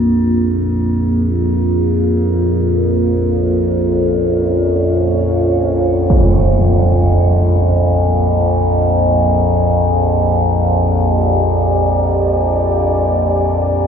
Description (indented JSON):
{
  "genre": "dark ambient drone",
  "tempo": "free time",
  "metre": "none",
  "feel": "none",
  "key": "Bb minor",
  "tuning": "A4 = 442 Hz",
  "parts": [
    { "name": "dark analog pad", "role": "sustained chords", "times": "0.0-13.9 s", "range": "Bb3 to D5", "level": "-18 LUFS", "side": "equal", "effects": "chorus, shimmer reverb" },
    { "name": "overtone-sweeping drone", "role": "drone", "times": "0.0-13.9 s", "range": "Bb1 to F2", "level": "-13 LUFS", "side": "equal", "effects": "chorus, built-in reverb" },
    { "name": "bronze singing bowl", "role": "texture", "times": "0.0-13.9 s", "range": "F4", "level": "-34 LUFS", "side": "left 2 dB", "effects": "shimmer reverb" },
    { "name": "impact", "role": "percussion", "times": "6.1-6.4 s", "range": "none", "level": "-20 LUFS", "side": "equal", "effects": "none" }
  ],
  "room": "wet cathedral reverb, RT60 7.0 s",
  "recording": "dreamy mix soaked in reverb",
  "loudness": "-12 LUFS",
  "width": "side -7 dB against mid",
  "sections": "0.0-13.9 A section",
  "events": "fade-out on analog synth pad 0.0-13.9",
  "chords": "0.0 Bbm; 8.6 Gm"
}